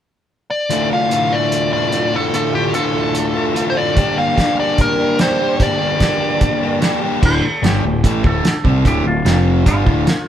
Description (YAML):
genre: classic rock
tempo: 147 BPM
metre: 4/4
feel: straight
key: D minor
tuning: A4 = 445 Hz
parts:
  - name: nasal lead guitar with a parked wah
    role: melody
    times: 0.5-6.8 s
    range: G4 to F5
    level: -18 LUFS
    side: left 1 dB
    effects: overdrive
  - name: overdriven electric guitar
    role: riff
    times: 0.7-10.1 s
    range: D2 to G4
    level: -21 LUFS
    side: right 6 dB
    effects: none
  - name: sludgy distorted guitar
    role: riff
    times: 0.7-10.1 s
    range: D2 to G4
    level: -20 LUFS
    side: left 6 dB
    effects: overdrive
  - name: cloth-damped thuddy drum kit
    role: drums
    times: 0.7-10.2 s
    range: crash cymbal, hi-hat, kick drum, snare drum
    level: -18 LUFS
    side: right 1 dB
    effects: none
  - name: fuzz picked electric bass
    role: bass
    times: 7.2-10.1 s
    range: D1 to C2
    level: -19 LUFS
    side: right 1 dB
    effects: overdrive
  - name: clean lap steel guitar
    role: second line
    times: 7.3-10.3 s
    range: F4 to C5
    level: -23 LUFS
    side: right 1 dB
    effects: none
room: moderate stone room reverb, RT60 1.0 s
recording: band playing live in one room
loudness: -14 LUFS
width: side -10 dB against mid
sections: 0.7-7.2 A section; 7.2-10.3 B section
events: none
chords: 0.0 N.C.; 0.7 Dm; 4.0 Gm; 7.2 D5; 9.3 F5; 9.7 Dm